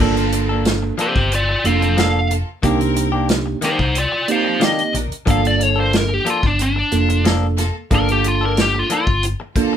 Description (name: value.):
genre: straight-eighth soul blues.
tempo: 91 BPM.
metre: 4/4.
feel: straight.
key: G minor.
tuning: A4 = 439 Hz.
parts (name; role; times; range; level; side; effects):
bell-like tine electric piano; accompaniment; 0.0-9.8 s; Bb3 to A4; -21 LUFS; right 7 dB; none.
clear symphonic string section; sustained chords; 0.0-9.8 s; Bb3 to D5; -29 LUFS; left 2 dB; none.
direct-recorded clean electric guitar; stabs; 0.0-9.8 s; Eb3 to A4; -24 LUFS; left 4 dB; none.
hollow-body short-scale fingered electric bass; bass; 0.0-9.3 s; F1 to C2; -20 LUFS; equal; none.
warm soul drum kit; drums; 0.0-9.7 s; hi-hat, kick drum, snare drum; -20 LUFS; equal; none.
biting lead guitar; melody; 1.0-9.2 s; D4 to F5; -18 LUFS; left 1 dB; overdrive.
room: light reverb.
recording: band playing live in one room.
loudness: -15 LUFS.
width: side -9 dB against mid.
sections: 0.0-9.8 A section.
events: lead electric guitar solo 0.0-9.8.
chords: 0.0 Gm9; 2.6 Cm9; 5.3 Gm9.